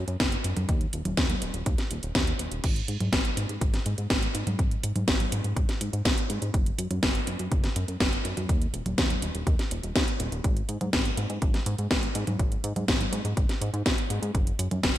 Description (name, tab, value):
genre	italo disco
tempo	123 BPM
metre	4/4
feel	straight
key	unclear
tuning	A4 = 440 Hz
part	chorused synth bass	bass	0.0-15.0 s	D#1 to G#2	-30 LUFS	equal	none
part	house drum kit	drums	0.1-15.0 s	congas, crash cymbal, hi-hat, snare drum	-29 LUFS	equal	gated reverb
part	electronic kick drum	drums	0.2-14.9 s	none	-27 LUFS	equal	none
room	light reverb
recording	bright 1980s-style digital production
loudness	-25 LUFS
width	side -13 dB against mid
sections	0.0-15.0 A section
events	none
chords	none